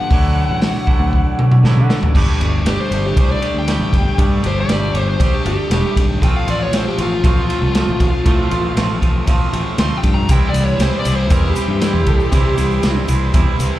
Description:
indie rock; 118 BPM; 4/4; straight; A4 = 443 Hz
dark smooth lead guitar; melody; 0.0-13.0 s; F4 to C6; -22 LUFS; left 1 dB; overdrive, slapback echo
crunchy overdriven guitar; riff; 0.0-13.8 s; G2 to G4; -24 LUFS; left 6 dB; slapback echo
twangy electric guitar; riff; 0.0-13.8 s; A2 to G4; -24 LUFS; right 7 dB; wide subtle chorus, slapback echo
growling fingered electric bass; bass; 0.1-13.7 s; E1 to D3; -18 LUFS; equal; overdrive
raw garage drum kit; drums; 0.1-13.7 s; crash cymbal, hi-hat, kick drum, ride cymbal, snare drum, toms; -16 LUFS; equal
string machine, violins; sustained chords; 10.3-13.8 s; E4 to C6; -32 LUFS; equal
tube shaker; percussion; 10.3-13.7 s; -37 LUFS; left 3 dB
barky tine electric piano; second line; 12.1-13.4 s; E4 to A4; -31 LUFS; right 2 dB; medium stereo tremolo, slapback echo
small room ambience; live gig heard through the venue's PA, club reverb; -13 LUFS; side -14 dB against mid
0.0-2.1 A section; 2.1-13.8 B section
drum fill 1.1-2.1; lead electric guitar solo 2.1-13.8
0.1 Dadd9; 2.1 Gsus2; 6.2 F/A; 10.3 C
| 0.11 0.62 1.13 1.64 | 2.15 2.66 3.17 3.68 | 4.19 4.70 5.20 5.71 | 6.22 6.73 7.24 7.75 | 8.26 8.77 9.28 9.79 | 10.29 10.80 11.31 11.82 | 12.33 12.84 13.35

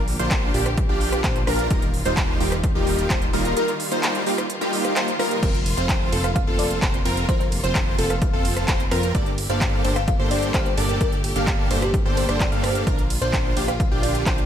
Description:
EDM, festival progressive house; 129 BPM; 4/4; straight; G minor; A4 = 440 Hz
rich symphonic string section; sustained chords; 0.0-14.5 s; Bb2 to A4; -32 LUFS; equal; sidechain pumping
fat analog bass; bass; 0.0-14.5 s; Eb1 to F2; -26 LUFS; equal; sidechain pumping
big-room dance drum kit; drums; 0.1-14.5 s; crash cymbal, handclaps, hi-hat, ride cymbal, rim click; -28 LUFS; right 1 dB; overdrive
plucky unison lead; arpeggios; 0.2-14.4 s; G4 to F5; -29 LUFS; equal; analog chorus, sidechain pumping, dub echo
big supersaw lead; riff; 0.2-14.4 s; G3 to F5; -26 LUFS; equal; sidechain pumping, dub echo
electronic kick drum; drums; 0.3-14.4 s; -23 LUFS; equal; overdrive
swell; sound effects; 4.7-5.4 s; -33 LUFS; right 3 dB
bell-like FM electric piano; melody; 5.8-14.1 s; G4 to F5; -30 LUFS; equal; chorus, phaser, dub echo
digital ambience; -19 LUFS; side -9 dB against mid
0.0-14.5 A section
swell 4.7-5.4
0.0 Bb; 1.7 Ebadd9; 5.4 Fsus4; 9.1 Gmadd9; 12.9 Bb
0.31 0.78 1.24 | 1.71 2.17 2.64 3.10 | 3.57 4.03 4.50 4.96 | 5.43 5.89 6.36 6.82 | 7.29 7.75 8.22 8.68 | 9.15 9.61 10.08 10.54 | 11.01 11.47 11.94 12.40 | 12.87 13.33 13.80 14.26

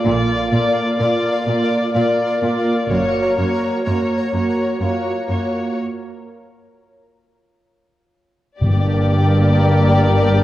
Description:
cinematic, suspense film score; 63 BPM; 3/4; straight; A4 = 440 Hz
muted chamber violin section; melody; 0.0-10.4 s; Db5 to D5; -23 LUFS; left 2 dB
muted studio viola section; accompaniment; 0.0-10.4 s; Bb3 to Gb4; -22 LUFS; right 1 dB
pulsing gated texture; sustained chords; 0.0-10.4 s; Bb4 to Bb5; -24 LUFS; left 1 dB; chorus, built-in reverb
vibraphone with medium mallets; texture; 0.0-10.4 s; F4 to Bb5; -29 LUFS; equal
muted chamber cello section; bass; 0.1-10.4 s; Gb2 to Bb2; -22 LUFS; right 1 dB
muted chamber double bass section; bass; 0.1-3.3, 8.6-10.4 s; Gb1 to Bb1; -18 LUFS; right 1 dB
muted symphonic violin section; second line; 8.6-10.4 s; G4; -24 LUFS; left 4 dB
warm French horn section; sustained chords; 8.6-10.4 s; Bb3 to D4; -22 LUFS; left 2 dB
timpani; percussion; 8.6-10.0 s; G2; -21 LUFS; left 1 dB
wet scoring stage reverb, RT60 1.7 s; worn, warbling old tape, cassette tape, warbly pitch drift; -15 LUFS; side -14 dB against mid
0.0-8.6 A section; 8.6-10.4 B section
break 5.8-8.6
0.0 Bb; 2.9 Gb; 5.8 N.C.; 8.6 Gm
| 0.05 1.00 1.95 | 2.90 3.86 4.81 | 5.76 6.71 7.67 | 8.62 9.57

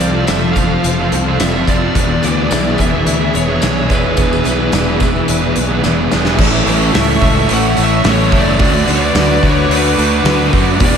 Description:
rock, shoegaze and dream pop; 108 BPM; 4/4; straight; A major; A4 = 441 Hz
fuzz lead guitar; melody; 0.0-11.0 s; B4 to F#5; -20 LUFS; equal; distortion, analog delay
warm analog pad; sustained chords; 0.0-11.0 s; G#4 to D6; -22 LUFS; left 1 dB; chorus
picked twelve-string acoustic guitar; arpeggios; 0.0-6.4 s; F3 to D4; -26 LUFS; right 4 dB; analog chorus, analog delay
overdriven electric guitar; riff; 0.0-11.0 s; A2 to A4; -18 LUFS; right 8 dB; reverse reverb
thick fuzz guitar; riff; 0.0-11.0 s; E2 to D4; -18 LUFS; left 8 dB; distortion, lush chorus
fuzz fingered electric bass; bass; 0.0-11.0 s; E1 to F#2; -18 LUFS; equal; overdrive
loose indie drum kit; drums; 0.0-10.9 s; crash cymbal, hi-hat, kick drum, snare drum; -17 LUFS; equal
tambourine; percussion; 0.3-6.3 s; -31 LUFS; left 10 dB
wet lush hall reverb, RT60 1.6 s, small room ambience; dreamy mix soaked in reverb; -11 LUFS; side -7 dB against mid
0.0-6.4 A section; 6.4-11.0 B section
drum fill 5.8-6.4
0.0 F6; 2.0 E7; 6.4 A; 8.6 D6
0.28 0.84 1.40 | 1.95 2.51 3.06 3.62 | 4.17 4.73 5.28 5.83 | 6.39 6.94 7.49 8.04 | 8.60 9.15 9.70 10.25 | 10.80

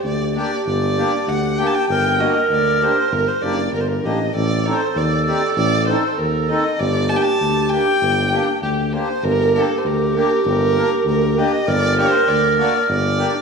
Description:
klezmer; 98 BPM; 2/4; straight; G harmonic minor; A4 = 440 Hz
dark violin; melody; 0.0-13.4 s; G4 to A5; -21 LUFS; right 1 dB
dark clarinet; second line; 0.0-13.4 s; G4 to Bb4; -20 LUFS; right 3 dB
warm tuba; bass; 0.0-13.2 s; F#1 to Eb2; -21 LUFS; left 1 dB
accordion; accompaniment; 0.3-13.3 s; Bb3 to Bb4; -24 LUFS; left 2 dB
wet recital hall reverb, RT60 1.4 s; studio ambience; -16 LUFS; side -5 dB against mid
0.0-9.2 A section; 9.2-13.4 A section
0.0 Gm; 4.3 Adim; 6.8 Gm
0.04 | 0.66 1.27 | 1.89 2.50 | 3.12 3.73 | 4.35 4.96 | 5.57 6.18 | 6.79 7.41 | 8.02 8.63 | 9.24 9.85 | 10.45 11.06 | 11.67 12.28 | 12.89

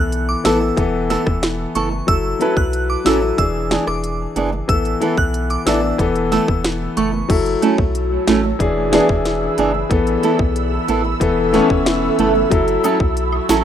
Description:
dancehall; 92 BPM; 4/4; straight; A4 = 440 Hz
glassy synth bell; melody; 0.0-7.1 s; C#6 to F#6; -24 LUFS; right 3 dB; chorus, tape echo
clear concert grand piano; accompaniment; 0.0-13.6 s; E3 to B4; -19 LUFS; left 4 dB; sidechain pumping
warm sub bass; bass; 0.0-13.6 s; E1 to B1; -24 LUFS; equal
island pop drum kit; drums; 0.1-13.6 s; crash cymbal, hi-hat, kick drum, rim click, snare drum; -20 LUFS; equal; overdrive
flamenco guitar; arpeggios; 0.4-13.6 s; E3 to A4; -21 LUFS; right 6 dB; tape echo
ethereal airy pad; sustained chords; 8.0-13.6 s; F#4 to E6; -22 LUFS; right 2 dB; ensemble chorus, built-in reverb, phaser, sidechain pumping
cabasa and woodblock; percussion; 12.8-13.6 s; -29 LUFS; left 7 dB
light reverb, digital ambience; rough home demo mix; -15 LUFS; side -9 dB against mid
0.0-7.3 A section; 7.3-13.6 B section
0.0 Asus2; 0.8 Esus4; 2.1 F#m7; 3.4 E7; 4.7 Asus2; 6.0 Esus4; 7.3 F#m7; 8.6 E7; 9.9 Asus2; 11.2 Esus4; 12.5 F#m7
0.12 0.78 1.43 | 2.08 2.73 3.38 4.04 | 4.69 5.34 5.99 6.65 | 7.30 7.95 8.60 9.25 | 9.91 10.56 11.21 11.86 | 12.52 13.17

